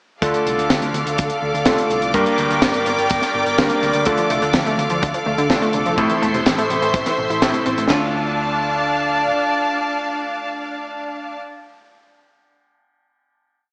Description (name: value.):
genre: italo disco.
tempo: 125 BPM.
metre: 4/4.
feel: straight.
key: D minor.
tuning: A4 = 438 Hz.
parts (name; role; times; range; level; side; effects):
clear symphonic string section; sustained chords; 0.2-11.4 s; D4 to D6; -23 LUFS; equal; none.
warm electric grand piano; stabs; 0.2-11.4 s; G2 to Bb4; -24 LUFS; equal; tape echo.
hollow-body short-scale picked electric bass; bass; 0.2-9.3 s; E1 to A2; -31 LUFS; equal; none.
tight funk drum kit; drums; 0.2-8.0 s; kick drum, ride cymbal, snare drum; -27 LUFS; equal; studio reverb, gated reverb.
tight funk drum kit; drums; 0.2-7.9 s; hi-hat, snare drum; -24 LUFS; equal; studio reverb, gated reverb.
analog pluck; arpeggios; 4.1-8.1 s; C3 to E4; -27 LUFS; equal; chorus, tape echo.
room: moderate lush hall reverb, RT60 2.2 s.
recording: small speaker sound.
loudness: -19 LUFS.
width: mono.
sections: 0.2-7.9 verse; 7.9-11.7 final chord.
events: none.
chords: 0.2 Dm; 2.1 Gm; 4.1 Dm; 6.0 Am; 7.9 Dm.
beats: | 0.22 0.70 1.18 1.66 | 2.14 2.62 3.10 3.58 | 4.06 4.54 5.02 5.50 | 5.98 6.46 6.94 7.42 | 7.90 8.38 8.86 9.34 | 9.82 10.30 10.78 11.26.